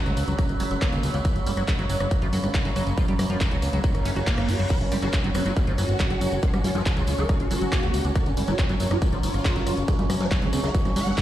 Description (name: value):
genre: psychedelic trance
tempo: 139 BPM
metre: 4/4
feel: straight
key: F# major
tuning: A4 = 443 Hz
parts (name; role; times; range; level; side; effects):
- overtone-sweeping drone; sustained chords; 0.0-11.2 s; F#3 to F#4; -35 LUFS; equal; chorus, built-in reverb, sidechain pumping
- ethereal airy pad; texture; 0.0-11.2 s; C#4 to B5; -33 LUFS; right 1 dB; ensemble chorus, built-in reverb, phaser, sidechain pumping
- liquid acid bass; riff; 0.1-11.2 s; E#3 to G4; -31 LUFS; equal; chorus, auto-pan, sidechain pumping, dub echo
- fat analog bass; bass; 0.1-11.1 s; F#1 to F#2; -26 LUFS; equal; none
- big-room dance drum kit; drums; 0.1-11.2 s; crash cymbal, handclaps, hi-hat, rim click; -33 LUFS; equal; none
- tambourine; percussion; 0.1-11.2 s; none; -40 LUFS; right 2 dB; none
- electronic kick drum; drums; 0.4-11.2 s; none; -24 LUFS; equal; none
- reverse cymbal; sound effects; 4.0-4.7 s; none; -38 LUFS; left 1 dB; none
- swarming rave lead; melody; 4.7-11.2 s; C#4 to F#5; -30 LUFS; right 1 dB; chorus, phaser, sidechain pumping, dub echo
room: light reverb, digital ambience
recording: played on a big sound system in a bare room, stone room reverb, lossy compression artefacts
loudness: -21 LUFS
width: side -13 dB against mid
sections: 0.0-11.2 A section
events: filter sweep on acid bass 0.0-11.2; reverse cymbal 4.0-4.7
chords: 0.0 F#5